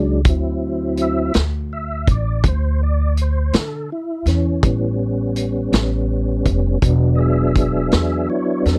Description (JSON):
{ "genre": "slow blues", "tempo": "55 BPM (dotted quarters)", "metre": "12/8", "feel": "straight", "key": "unclear", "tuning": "A4 = 442 Hz", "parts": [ { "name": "tonewheel organ", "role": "sustained chords", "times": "0.0-8.8 s", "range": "E3 to E5", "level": "-23 LUFS", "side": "equal", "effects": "slow rotary speaker, overdrive, chorus vibrato" }, { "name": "upright bass", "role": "bass", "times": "0.0-8.8 s", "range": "E1 to D3", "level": "-21 LUFS", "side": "equal", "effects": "none" }, { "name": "vintage drum kit", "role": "drums", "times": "0.2-8.8 s", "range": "hi-hat, kick drum, snare drum", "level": "-20 LUFS", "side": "equal", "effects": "none" } ], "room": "little or no reverb", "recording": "dry, close 1970s-style studio recording", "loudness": "-19 LUFS", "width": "mono", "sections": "0.0-8.8 A section", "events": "tonewheel organ solo 0.0-8.8", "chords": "0.3 D7; 4.6 A7; 6.8 E7" }